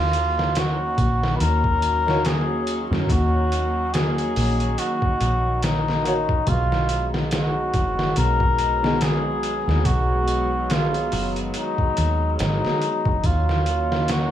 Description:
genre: trip hop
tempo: 71 BPM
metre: 4/4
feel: swing 57% on 16ths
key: Eb minor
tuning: A4 = 440 Hz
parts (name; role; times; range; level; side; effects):
- trumpet with cup mute; melody; 0.0-14.3 s; D#4 to Cb5; -24 LUFS; left 1 dB; dub echo
- dark studio string section; sustained chords; 0.0-14.3 s; Eb3 to Db4; -28 LUFS; equal; none
- deep dub fingered electric bass; bass; 0.0-14.3 s; F#1 to Gb2; -24 LUFS; equal; none
- trip hop sampler-style drum kit; drums; 0.1-14.3 s; hi-hat, kick drum, snare drum; -25 LUFS; equal; none
- felt-muted upright piano; accompaniment; 2.1-9.0 s; B2 to Db5; -28 LUFS; equal; tremolo, tape echo
room: light reverb, small room ambience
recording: vinyl crackle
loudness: -19 LUFS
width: side -11 dB against mid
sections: 0.0-14.3 A section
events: none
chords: 0.0 Ebm7; 6.5 B6; 13.2 Ebm7

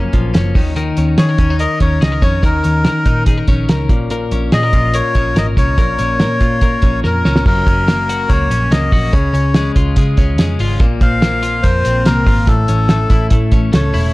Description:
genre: jangly indie pop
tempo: 143 BPM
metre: 4/4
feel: straight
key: unclear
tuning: A4 = 440 Hz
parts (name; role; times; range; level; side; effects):
- twelve-string electric guitar; arpeggios; 0.0-14.1 s; Gb2 to Bb4; -19 LUFS; left 2 dB; none
- vintage muted picked electric bass; bass; 0.0-14.1 s; E1 to Eb3; -17 LUFS; equal; none
- cloth-damped thuddy drum kit; drums; 0.1-14.0 s; crash cymbal, hi-hat, kick drum, snare drum; -14 LUFS; equal; none
- melodica; melody; 1.2-14.1 s; A4 to F5; -19 LUFS; left 2 dB; none
room: light reverb, small room reverb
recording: dark, warm production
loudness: -11 LUFS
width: side -20 dB against mid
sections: 0.0-7.5 A section; 7.5-14.1 B section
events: drum fill 7.0-7.5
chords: 0.0 Gbmaj7; 0.6 Eb5; 3.9 Bbm; 7.5 Gb; 9.1 Db; 10.8 Bbsus2; 12.5 A

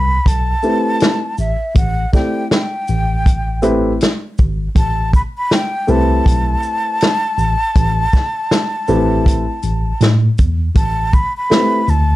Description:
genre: hip hop, jazz-hop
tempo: 80 BPM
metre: 4/4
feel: swing 59% on 16ths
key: A minor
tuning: A4 = 440 Hz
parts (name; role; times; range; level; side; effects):
- breathy mellow silver concert flute; melody; 0.0-12.2 s; E5 to B5; -19 LUFS; equal; none
- mellow tine electric piano; bass; 0.0-12.2 s; G#1 to A2; -17 LUFS; equal; medium stereo tremolo
- vintage drum kit; drums; 0.3-12.1 s; hi-hat, kick drum, shaker, snare drum; -13 LUFS; equal; none
- dark concert grand piano; accompaniment; 0.6-11.8 s; A3 to D5; -17 LUFS; equal; none
room: light reverb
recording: dark, warm production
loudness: -13 LUFS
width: side -16 dB against mid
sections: 0.0-10.8 A section; 10.8-12.2 A section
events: none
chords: 0.0 Am9

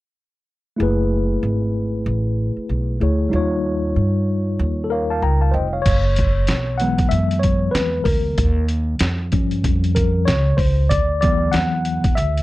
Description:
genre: hip hop, jazz-hop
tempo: 95 BPM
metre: 4/4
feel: swing 60% on 16ths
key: unclear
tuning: A4 = 439 Hz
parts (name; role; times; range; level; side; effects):
- mellow tine electric piano; accompaniment; 0.8-12.4 s; E3 to A#5; -21 LUFS; left 2 dB; fast stereo tremolo
- upright bass; bass; 0.8-12.4 s; E#1 to G2; -20 LUFS; right 1 dB; none
- trip hop sampler-style drum kit; drums; 5.9-12.4 s; crash cymbal, hi-hat, kick drum, snare drum; -21 LUFS; equal; none
room: little or no reverb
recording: dry, close 1970s-style studio recording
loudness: -17 LUFS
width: side -17 dB against mid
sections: 0.8-5.9 A section; 5.9-12.4 B section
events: tine electric piano solo 5.9-12.4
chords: 0.8 F#m11; 3.3 D#9; 5.9 F#9sus4; 8.4 D#9; 10.9 D6

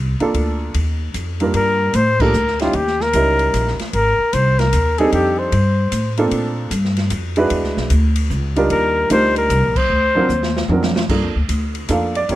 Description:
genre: jazz, small-group swing and bop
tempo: 151 BPM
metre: 3/4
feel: swing 65% on 8ths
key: G minor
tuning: A4 = 440 Hz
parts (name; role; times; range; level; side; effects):
- upright bass; bass; 0.0-12.4 s; G1 to Bb2; -19 LUFS; equal; none
- warm upright piano; accompaniment; 0.2-12.4 s; G2 to F5; -19 LUFS; right 2 dB; none
- open jazz drum kit; drums; 0.2-12.4 s; crash cymbal, hi-hat, kick drum, ride cymbal, snare drum, toms; -26 LUFS; equal; none
- dark trumpet; melody; 1.6-6.2, 8.7-10.7 s; F4 to C5; -17 LUFS; left 2 dB; none
room: light reverb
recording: close, detailed microphones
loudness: -15 LUFS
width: side -15 dB against mid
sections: 0.0-1.5 A section; 1.5-11.1 B section; 11.1-12.4 C section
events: band accent 2.1, 9.7; drum fill 10.3-11.1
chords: 0.0 Gm7 (rootless); 1.5 Gm9; 2.7 Eb7b9; 3.9 Abadd9; 5.1 F13; 6.3 Bbmaj7; 7.5 E9; 8.7 Ebmaj7; 9.9 D7alt; 11.1 Gm7 (rootless)

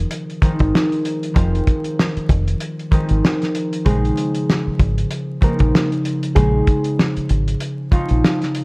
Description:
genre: hip hop, boom-bap hip-hop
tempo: 96 BPM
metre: 4/4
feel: swing 57% on 16ths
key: Bb minor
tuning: A4 = 440 Hz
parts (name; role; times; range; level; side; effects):
- concert harp; accompaniment; 0.0-8.6 s; Db3 to F4; -21 LUFS; equal; cassette tape, high-pass filter, low-pass filter
- deep dub fingered electric bass; bass; 0.0-8.2 s; F1 to Bb1; -18 LUFS; equal; none
- cloth-damped thuddy drum kit; drums; 0.1-8.6 s; hi-hat, kick drum, snare drum; -17 LUFS; equal; vintage 12-bit sampler grit
- nylon-string guitar; melody; 3.9-8.4 s; F3 to Bb4; -25 LUFS; right 1 dB; high-pass filter, low-pass filter
room: small room ambience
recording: worn, warbling old tape, cassette tape, vinyl crackle, warbly pitch drift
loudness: -16 LUFS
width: side -30 dB against mid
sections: 0.0-3.9 A section; 3.9-8.6 A section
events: none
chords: 0.0 Fm7; 3.9 Bbm11

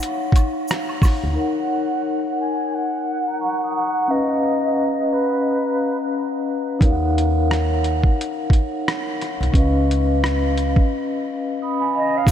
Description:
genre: lo-fi hip hop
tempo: 88 BPM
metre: 4/4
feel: swing 61% on 16ths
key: Eb minor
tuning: A4 = 440 Hz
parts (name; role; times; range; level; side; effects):
- vibraphone with soft mallets; accompaniment; 0.0-12.3 s; Db4 to Eb6; -21 LUFS; left 1 dB; low-pass filter
- boom bap sampler-style drum kit; drums; 0.0-1.2, 6.8-12.3 s; hi-hat, kick drum, rim click; -19 LUFS; equal; vintage 12-bit sampler grit
- tube shaker and woodblock; percussion; 0.0-1.2, 12.3 s; none; -35 LUFS; right 2 dB; none
- upright bass; bass; 1.2-1.4, 6.8-12.3 s; C2 to Eb2; -20 LUFS; equal; none
- mellow jazz flute; melody; 1.4-6.5, 12.0-12.3 s; Cb5 to Ab5; -24 LUFS; equal; low-pass filter, analog delay
room: moderate huge ambient reverb, RT60 4.9 s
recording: dreamy mix soaked in reverb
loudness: -18 LUFS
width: side -9 dB against mid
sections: 0.0-1.4 A section; 1.4-12.3 B section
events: filter sweep 1.4-12.3; break 10.9-12.3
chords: 0.0 Ebm9; 1.4 Ebm7; 4.1 Db9; 6.8 Ebm7; 9.5 Db9

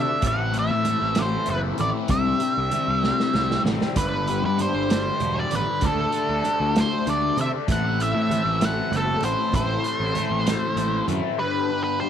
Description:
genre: psychedelic rock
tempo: 65 BPM (dotted quarters)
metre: 6/8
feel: straight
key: A minor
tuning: A4 = 440 Hz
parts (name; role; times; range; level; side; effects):
- octave-fuzz lead guitar; melody; 0.0-12.1 s; A4 to F#5; -25 LUFS; right 1 dB; wah, distortion, tape echo
- overdriven combo organ; sustained chords; 0.0-12.1 s; G3 to B5; -34 LUFS; right 13 dB; none
- fuzz guitar; riff; 0.0-12.1 s; G2 to D4; -27 LUFS; left 11 dB; distortion, phaser
- fuzz picked electric bass; bass; 0.0-11.2 s; E1 to C3; -27 LUFS; right 1 dB; overdrive
- vintage drum kit; drums; 0.2-11.2 s; hi-hat, kick drum, snare drum; -27 LUFS; right 2 dB; none
- congas; percussion; 0.2-11.2 s; none; -35 LUFS; right 12 dB; none
room: studio reverb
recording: 1960s-style stereo with parts hard left and right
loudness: -20 LUFS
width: side -9 dB against mid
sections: 0.0-11.4 A section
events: drum fill 3.0-4.0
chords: 0.2 Amadd9; 2.1 Cadd9; 4.0 G; 5.8 Dsus4; 7.7 Amadd9; 11.4 G

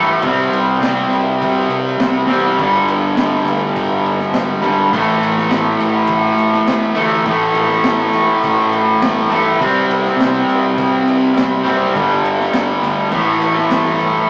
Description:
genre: garage rock duo or trio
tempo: 102 BPM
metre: 4/4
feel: straight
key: unclear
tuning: A4 = 438 Hz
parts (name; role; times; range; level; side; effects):
- fuzz guitar; riff; 0.0-14.3 s; G2 to C4; -16 LUFS; equal; distortion
- fuzz picked electric bass; bass; 0.0-14.2 s; E1 to C3; -29 LUFS; equal; overdrive, tube saturation
- crunchy breakbeat drum kit; drums; 0.2-14.1 s; crash cymbal, kick drum, snare drum; -23 LUFS; equal; none
room: wet booth ambience, RT60 0.2 s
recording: rough rehearsal-room recording, warm saturation, small speaker sound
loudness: -15 LUFS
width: mono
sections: 0.0-14.3 A section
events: none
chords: 0.2 C5; 2.6 G5; 4.9 A5; 9.6 C5; 12.0 G5; 13.1 A5

